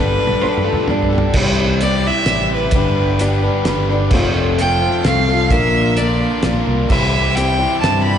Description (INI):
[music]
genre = folk rock and heartland rock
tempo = 130 BPM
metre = 3/4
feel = straight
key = C major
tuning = A4 = 440 Hz
[part]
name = rich fiddle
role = melody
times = 0.0-8.2 s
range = B4 to B5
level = -20 LUFS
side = right 1 dB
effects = slapback echo, tape echo
[part]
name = picked acoustic archtop guitar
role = accompaniment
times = 0.0-8.2 s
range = Bb2 to C5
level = -20 LUFS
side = left 6 dB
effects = slapback echo
[part]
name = crunchy overdriven guitar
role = riff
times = 0.0-8.2 s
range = F2 to A4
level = -22 LUFS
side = right 1 dB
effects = none
[part]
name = fingered electric bass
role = bass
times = 0.0-8.2 s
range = F1 to G2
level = -19 LUFS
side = equal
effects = none
[part]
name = cloth-damped thuddy drum kit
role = drums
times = 0.3-7.9 s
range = crash cymbal, hi-hat, kick drum, snare drum, toms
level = -20 LUFS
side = right 1 dB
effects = none
[part]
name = twelve-string electric guitar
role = second line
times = 0.4-1.2 s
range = A3 to G4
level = -23 LUFS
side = right 2 dB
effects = slapback echo
[sound]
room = little or no reverb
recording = live gig heard through the venue's PA, recital hall reverb, nothing above 10.9 kHz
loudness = -13 LUFS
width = side -8 dB against mid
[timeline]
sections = 0.0-1.4 A section; 1.4-8.2 B section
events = drum fill 0.0-1.4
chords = 0.0 Gadd9; 1.4 C; 2.7 G; 4.1 F; 5.5 Bb; 6.9 C